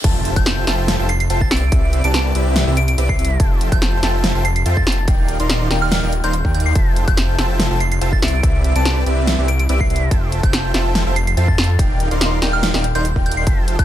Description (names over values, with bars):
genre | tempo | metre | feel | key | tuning
future bass | 143 BPM | 4/4 | swing 53% on 16ths, half-time | F lydian | A4 = 440 Hz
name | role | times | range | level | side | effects
airy dreamy lead | arpeggios | 0.0-13.8 s | E5 to C6 | -27 LUFS | left 1 dB | chorus, sidechain pumping, ping-pong delay
dense compressed supersaw | riff | 0.0-13.8 s | C4 to C6 | -24 LUFS | right 1 dB | vintage 12-bit sampler grit, sidechain pumping
wide detuned saw bass | bass | 0.0-13.8 s | Eb1 to F2 | -18 LUFS | equal | chorus, sidechain pumping
big-room dance drum kit | drums | 0.0-13.8 s | crash cymbal, hi-hat, snare drum | -22 LUFS | equal | studio reverb
electronic kick drum | drums | 0.0-13.8 s | none | -18 LUFS | equal | studio reverb
riser and impact | sound effects | 0.0-1.7 s | none | -29 LUFS | equal | none
soft synth bell | melody | 0.4-13.8 s | F6 to D7 | -26 LUFS | right 1 dB | chorus, phaser, sidechain pumping, dub echo
room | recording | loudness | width
little or no reverb | high-pass filter | -14 LUFS | side -12 dB against mid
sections
0.0-13.8 A section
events
drop 0.0-13.8; impact 0.0-1.7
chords
0.0 Fmaj9; 1.5 Cmaj7; 3.4 Fmaj9; 5.1 Ebmaj9; 6.8 Fmaj9; 8.2 Cmaj7; 10.1 Fmaj9; 11.8 Ebmaj9